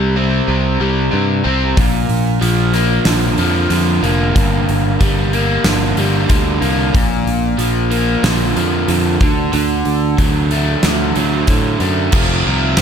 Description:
classic rock; 93 BPM; 4/4; straight; A4 = 441 Hz
overdriven electric guitar; riff; 0.0-12.8 s; F2 to C4; -16 LUFS; equal
picked electric bass; bass; 0.0-12.8 s; F1 to A2; -17 LUFS; equal
huge arena drum kit; drums; 1.8-12.8 s; crash cymbal, hi-hat, kick drum, snare drum; -18 LUFS; equal
small room ambience; -13 LUFS; side -7 dB against mid
0.0-12.1 A section
half time 0.0-12.1
0.0 C5; 1.8 Bb; 4.4 Gm; 6.9 Bb; 9.2 D; 12.1 F
0.48 1.13 | 1.77 2.42 3.06 3.71 | 4.36 5.00 5.65 6.30 | 6.94 7.59 8.24 8.89 | 9.54 10.18 10.83 11.48 | 12.13 12.78

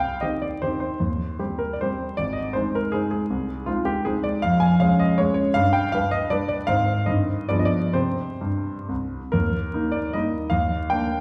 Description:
classical, romantic triple-time dance for piano with dotted rhythms; 125-170 BPM; 3/4; rubato; C minor; A4 = 440 Hz
clear concert grand piano; solo; 0.0-11.2 s; Ab1 to Ab5; -23 LUFS; equal
wet recital hall reverb, RT60 1.7 s; heard from further back in the room, vinyl crackle; -23 LUFS; mono
0.0-9.3 A section; 9.3-11.2 B section
0.0 Cm; 1.0 Cm/Eb; 2.2 Ab; 3.3 Ab/C; 4.4 Db/F; 5.5 G; 6.7 Ab; 7.1 Cm/G; 7.5 G7b9; 8.0 C5; 9.3 Eb; 10.5 Bb/Eb
0.22 0.62 | 1.00 1.40 1.79 | 2.16 2.54 2.94 | 3.29 3.67 4.07 | 4.43 4.80 5.17 | 5.55 5.93 6.32 | 6.69 7.07 7.51 | 7.96 8.42 8.90 | 9.34 9.74 10.14 | 10.53 10.92

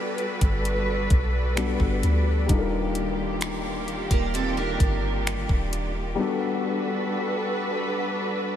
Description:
contemporary R&B; 65 BPM; 4/4; straight; A4 = 441 Hz
felt-muted upright piano; accompaniment; 0.0-8.6 s; G3 to Bb4; -29 LUFS; left 5 dB
warm studio string section; sustained chords; 0.0-8.6 s; Eb3 to D5; -29 LUFS; right 1 dB; sidechain pumping
trap drum kit; drums; 0.2-5.9 s; finger snaps, hi-hat, kick drum; -26 LUFS; equal
soft 808-style bass; bass; 0.4-6.2 s; Eb1 to D2; -27 LUFS; equal
picked steel-string acoustic guitar; arpeggios; 4.1-5.9 s; Bb3 to Bb4; -33 LUFS; right 6 dB; analog chorus, tape echo
moderate huge ambient reverb, RT60 7.3 s; dreamy mix soaked in reverb; -23 LUFS; side -10 dB against mid
0.0-8.6 A section
0.0 Gmaj7; 2.5 Ebmaj7; 6.2 Gmaj7
0.65 1.57 | 2.49 3.42 4.34 5.26 | 6.18 7.11 8.03

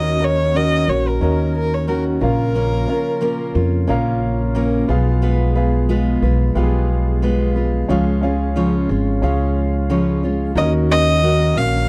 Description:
acoustic pop; 90 BPM; 4/4; swing 55% on 16ths; Eb minor; A4 = 440 Hz
warm violin; melody; 0.0-3.5, 10.6-11.9 s; Bb4 to F5; -22 LUFS; equal
picked steel-string acoustic guitar; accompaniment; 0.0-11.9 s; Bb2 to Db5; -24 LUFS; equal
warm concert grand piano; accompaniment; 0.0-11.9 s; Cb4 to F5; -27 LUFS; equal
mellow tonewheel organ; sustained chords; 0.0-11.9 s; Db3 to Ab4; -30 LUFS; equal
upright bass; bass; 0.0-11.9 s; Ab1 to F2; -21 LUFS; equal
little or no reverb; dry, close 1970s-style studio recording; -18 LUFS; mono
0.0-10.6 A section; 10.6-11.9 B section
0.0 Ebm7; 2.2 Bbm; 4.9 Fdim/Cb; 7.9 Db; 10.6 Ebm7
0.55 1.21 1.88 | 2.55 3.22 3.88 4.55 | 5.22 5.89 6.55 7.22 | 7.89 8.56 9.22 9.89 | 10.56 11.22

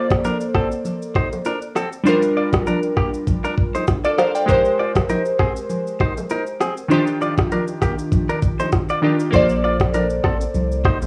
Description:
afrobeats; 99 BPM; 4/4; swing 55% on 16ths; Bb major; A4 = 445 Hz
glassy digital keys; accompaniment; 0.0-11.1 s; Eb3 to G5; -23 LUFS; equal; chorus
direct-recorded clean electric guitar; riff; 0.0-11.0 s; Bb3 to D5; -27 LUFS; equal
afro-pop drum kit; drums; 0.1-11.1 s; kick drum, rim click, shaker; -22 LUFS; equal; cassette tape
bongos and congas; percussion; 0.1-11.1 s; -30 LUFS; equal
round analog bass; bass; 9.3-11.1 s; A1 to C2; -25 LUFS; equal
moderate small room reverb, RT60 0.5 s; home recording on cassette, studio ambience; -19 LUFS; mono
0.0-11.1 A section
0.0 Bbmaj9; 2.1 Gm7; 4.5 Abmaj9; 6.9 Ebmaj9; 9.3 Bbmaj9
0.24 0.85 1.45 | 2.06 2.67 3.27 3.88 | 4.49 5.09 5.70 6.30 | 6.91 7.51 8.12 8.73 | 9.33 9.94 10.54

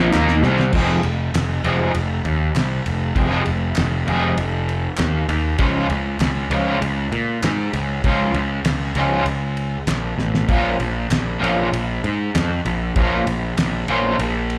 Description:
garage rock duo or trio; 98 BPM; 4/4; straight; F minor; A4 = 438 Hz
crunchy overdriven guitar; riff; 0.0-14.1 s; F2 to Ab4; -22 LUFS; equal; harmonic tremolo, slapback echo
fuzz picked electric bass; bass; 0.0-14.6 s; F1 to Bb2; -23 LUFS; equal; overdrive, tube saturation
cloth-damped thuddy drum kit; drums; 0.1-14.6 s; crash cymbal, kick drum, ride cymbal, snare drum; -27 LUFS; equal
group handclap; percussion; 0.1-13.7 s; -33 LUFS; equal; slapback echo
light reverb; live gig heard through the venue's PA, club reverb; -20 LUFS; mono
0.7-14.6 A section
drum fill 0.0-0.7, 10.2-10.5
0.0 F5; 0.7 Fm; 5.6 Db; 10.5 Bbm
0.14 | 0.74 1.35 1.95 2.56 | 3.17 3.77 4.38 4.99 | 5.60 6.21 6.82 7.44 | 8.05 8.66 9.28 9.89 | 10.50 11.12 11.73 12.35 | 12.96 13.58 14.19

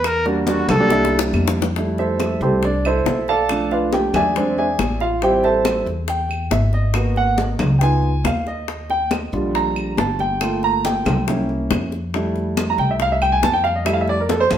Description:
Afro-Cuban jazz; 139 BPM; 4/4; straight; F major; A4 = 437 Hz
warm trumpet; melody; 0.0-1.3 s; D4 to Bb4; -20 LUFS; equal
upright bass; bass; 0.0-14.6 s; G1 to F2; -23 LUFS; equal
bongos; percussion; 0.0-14.6 s; -27 LUFS; left 6 dB
claves; percussion; 0.0-14.6 s; -32 LUFS; right 3 dB
congas; percussion; 0.0-14.6 s; -26 LUFS; left 2 dB
warm grand piano; accompaniment; 0.3-14.5 s; D3 to Bb5; -19 LUFS; right 2 dB
wet large studio reverb, RT60 0.9 s; band playing live in one room; -16 LUFS; side -10 dB against mid
0.0-1.8 A section; 1.8-14.6 A section
trumpet solo 0.0-1.8; drum fill 0.9-1.8; grand piano solo 1.8-14.6
0.0 Em7b5; 0.9 C9; 1.8 Fmaj9; 3.5 Bm7b5; 4.4 Eaug7; 5.2 Am7; 7.0 Abm7; 7.8 Db9; 8.7 Ebmaj9; 10.4 Gm9; 11.3 C7b9; 12.1 Fmaj9
| 0.05 0.48 0.91 1.34 | 1.77 2.21 2.64 3.07 | 3.50 3.93 4.36 4.80 | 5.23 5.66 6.09 6.53 | 6.96 7.39 7.82 8.25 | 8.69 9.12 9.55 9.98 | 10.41 10.84 11.28 11.71 | 12.14 12.57 13.00 13.43 | 13.86 14.29

